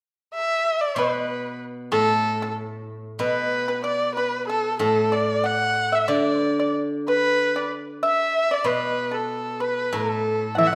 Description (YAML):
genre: chinese traditional, Chinese chamber ensemble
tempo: 94 BPM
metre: 2/4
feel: straight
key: A zhi mode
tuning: A4 = 438 Hz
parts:
  - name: warm erhu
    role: melody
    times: 0.3-10.8 s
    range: A4 to F#5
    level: -26 LUFS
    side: equal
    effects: none
  - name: pipa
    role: second line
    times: 1.0-10.8 s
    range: A4 to F#5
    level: -29 LUFS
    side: equal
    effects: none
  - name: steel-string zither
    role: accompaniment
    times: 1.0-10.8 s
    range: A2 to D3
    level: -29 LUFS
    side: equal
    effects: none
  - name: large dizi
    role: second line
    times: 10.6-10.8 s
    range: E5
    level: -28 LUFS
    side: equal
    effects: none
  - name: warm cello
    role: second line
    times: 10.6-10.7 s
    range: E3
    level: -25 LUFS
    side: equal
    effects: none
room: wet recital hall reverb, RT60 1.3 s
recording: none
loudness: -23 LUFS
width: mono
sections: 1.0-10.8 A section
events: none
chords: none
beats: 0.34 | 0.98 1.62 | 2.26 2.90 | 3.53 4.16 | 4.80 5.45 | 6.10 6.75 | 7.40 8.03 | 8.66 9.29 | 9.93 10.57